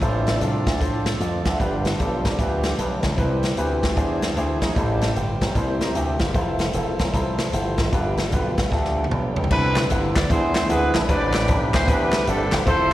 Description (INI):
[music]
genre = uptempo gospel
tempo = 152 BPM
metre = 4/4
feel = swing 64% on 8ths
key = C major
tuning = A4 = 440 Hz
[part]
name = warm concert grand piano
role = accompaniment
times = 0.0-12.9 s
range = G2 to Bb5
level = -26 LUFS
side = left 1 dB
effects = slapback echo
[part]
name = mellow French horn section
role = sustained chords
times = 0.0-9.5 s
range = C3 to E5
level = -36 LUFS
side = equal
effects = none
[part]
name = tonewheel organ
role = sustained chords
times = 0.0-12.9 s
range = D3 to E5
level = -30 LUFS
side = right 4 dB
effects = fast rotary speaker, overdrive
[part]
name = slap bass with an envelope filter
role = bass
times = 0.0-12.9 s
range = E1 to A2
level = -24 LUFS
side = equal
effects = none
[part]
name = swinging big-band drum kit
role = drums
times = 0.0-12.8 s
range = crash cymbal, hi-hat, kick drum, snare drum, toms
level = -24 LUFS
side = equal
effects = none
[part]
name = warm horn section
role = melody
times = 9.5-12.9 s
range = C4 to D5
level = -23 LUFS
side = equal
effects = slapback echo
[part]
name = group handclap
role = percussion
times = 9.8-12.6 s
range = none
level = -32 LUFS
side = left 2 dB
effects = slapback echo
[sound]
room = light reverb, small room ambience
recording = live gig heard through the venue's PA, recital hall reverb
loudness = -19 LUFS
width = side -14 dB against mid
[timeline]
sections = 0.0-9.5 A section; 9.5-12.9 B section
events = grand piano fill 5.6-6.3; drum fill 8.7-9.5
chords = 0.0 Dm7/A; 1.6 G7; 3.2 Cmaj7; 4.0 Eaug7; 4.8 Am7; 5.6 C7; 6.3 Fmaj7; 7.9 G7; 9.5 Cmaj9; 10.3 E7b13; 11.1 Am11